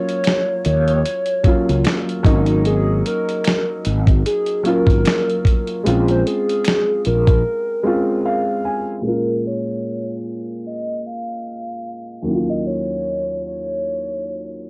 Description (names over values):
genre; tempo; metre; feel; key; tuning
lo-fi hip hop; 75 BPM; 4/4; swing 57% on 16ths; Bb minor; A4 = 439 Hz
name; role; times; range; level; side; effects
hollow clarinet-like synth lead; melody; 0.0-14.6 s; Ab4 to F5; -25 LUFS; equal; chorus, cassette tape
warm upright piano; accompaniment; 0.0-14.7 s; Eb2 to Ab5; -24 LUFS; equal; none
dusty soul sampler-style drum kit; drums; 0.1-7.4 s; hi-hat, kick drum, snare drum; -20 LUFS; equal; none
finger snaps; percussion; 0.2-6.9 s; none; -34 LUFS; equal; none
fretless electric bass; bass; 0.7-7.4 s; Ab1 to Eb2; -20 LUFS; equal; ensemble chorus
room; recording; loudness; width
light reverb; home recording on cassette, low-pass filter; -19 LUFS; mono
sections
0.0-9.0 A section; 9.0-14.7 B section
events
break 7.4-9.0; upright piano fill 7.8-9.0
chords
0.0 Ebm9; 2.2 Ab7sus4; 5.8 Bbm7; 12.2 Ebm9